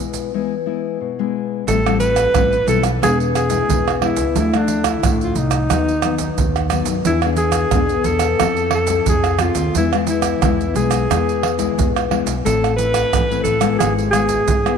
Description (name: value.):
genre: samba and choro.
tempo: 89 BPM.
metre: 4/4.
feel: straight.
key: A harmonic minor.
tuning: A4 = 440 Hz.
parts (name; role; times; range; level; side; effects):
nylon-string guitar; accompaniment; 0.0-14.8 s; G#2 to A4; -22 LUFS; left 13 dB; none.
tube shaker, surdo, pandeiro and tamborim; percussion; 0.1-14.8 s; none; -20 LUFS; right 6 dB; none.
breathy alto saxophone; melody; 1.7-14.8 s; D4 to B4; -20 LUFS; equal; none.
upright bass; bass; 1.7-14.8 s; E1 to F#2; -22 LUFS; equal; none.
room: moderate plate reverb, RT60 3.2 s.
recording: 1960s-style stereo with parts hard left and right.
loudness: -15 LUFS.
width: side -6 dB against mid.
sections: 0.0-1.7 A section; 1.7-14.8 B section.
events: none.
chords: 0.0 E; 1.7 Am7; 3.0 E; 4.4 Dmadd9; 5.7 B/D#; 7.1 E7; 8.4 Fmaj7; 9.8 E; 12.5 Am; 13.8 E/G#.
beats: 0.33 1.00 | 1.68 2.35 3.02 3.69 | 4.37 5.04 5.71 6.38 | 7.06 7.73 8.41 9.08 | 9.75 10.43 11.10 11.78 | 12.45 13.12 13.80 14.47.